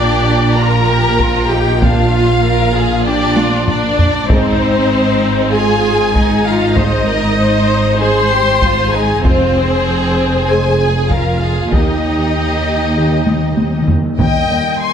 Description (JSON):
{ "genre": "cinematic, epic orchestral film score", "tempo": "97 BPM", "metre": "4/4", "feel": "straight", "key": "Eb major", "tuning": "A4 = 442 Hz", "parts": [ { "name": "warm symphonic violin section", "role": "melody", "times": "0.0-14.9 s", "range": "C5 to C6", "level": "-18 LUFS", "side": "left 3 dB", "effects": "none" }, { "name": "warm symphonic violin section", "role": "second line", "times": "0.0-14.9 s", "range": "D4 to Ab5", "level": "-20 LUFS", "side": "equal", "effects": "none" }, { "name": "rich symphonic viola section", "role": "accompaniment", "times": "0.0-13.9 s", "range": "C4 to C5", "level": "-18 LUFS", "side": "equal", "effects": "none" }, { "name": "mellow French horn section", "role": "sustained chords", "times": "0.0-14.9 s", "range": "G3 to Ab4", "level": "-24 LUFS", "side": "left 2 dB", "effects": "none" }, { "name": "rich symphonic double bass section", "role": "bass", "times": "0.0-14.6 s", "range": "F1 to Eb2", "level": "-19 LUFS", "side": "right 2 dB", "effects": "none" }, { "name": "warm symphonic cello section", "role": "bass", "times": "0.0-14.6 s", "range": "Eb2 to Bb2", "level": "-20 LUFS", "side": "right 1 dB", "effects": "none" }, { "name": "taiko ensemble", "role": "drums", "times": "1.2-14.8 s", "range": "none", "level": "-17 LUFS", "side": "equal", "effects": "none" }, { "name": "timpani", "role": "percussion", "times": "11.7-14.1 s", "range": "Eb3", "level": "-20 LUFS", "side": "equal", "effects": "none" } ], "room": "wet scoring stage reverb, RT60 1.6 s", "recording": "none", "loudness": "-11 LUFS", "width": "side -8 dB against mid", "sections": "0.0-14.2 A section", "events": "drum fill 3.4-4.3, 13.3-14.2; timpani fill 11.7-14.2", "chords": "0.0 Bb; 4.3 Ab; 9.2 Fm; 11.7 Eb" }